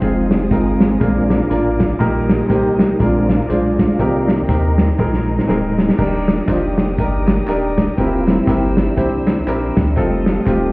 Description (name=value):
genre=uptempo gospel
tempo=121 BPM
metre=4/4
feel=swing 59% on 8ths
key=Eb major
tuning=A4 = 439 Hz
part: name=clear baby grand piano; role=accompaniment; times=0.0-10.7 s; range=Bb2 to C5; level=-19 LUFS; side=equal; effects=none
part: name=tonewheel organ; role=sustained chords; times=0.0-10.7 s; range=Eb3 to D5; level=-19 LUFS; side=equal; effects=slow rotary speaker, chorus vibrato
part: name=warm studio string section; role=sustained chords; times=0.0-10.7 s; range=Eb5 to E6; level=-35 LUFS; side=left 1 dB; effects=none
part: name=warm sub bass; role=bass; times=0.0-10.7 s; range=D1 to Eb2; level=-21 LUFS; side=equal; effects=none
part: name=warm soul drum kit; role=drums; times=0.0-10.6 s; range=crash cymbal, hi-hat, kick drum, snare drum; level=-18 LUFS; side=equal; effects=none
part: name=tambourine and handclaps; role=percussion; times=6.0-10.6 s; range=none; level=-38 LUFS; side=right 2 dB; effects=none
room=moderate concert hall reverb, RT60 1.8 s, small room ambience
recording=heard muffled through a wall, stone room reverb, EQ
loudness=-13 LUFS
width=side -24 dB against mid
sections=0.0-10.7 A section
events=tonewheel organ solo 0.0-10.7; drum fill 5.0-6.0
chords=0.0 Fm7; 1.0 Bb7; 2.0 Eb/Bb; 3.0 Bb7; 4.0 Cm7; 5.0 Bb9sus4; 6.0 Ebmaj7; 8.0 C7/E; 10.0 F7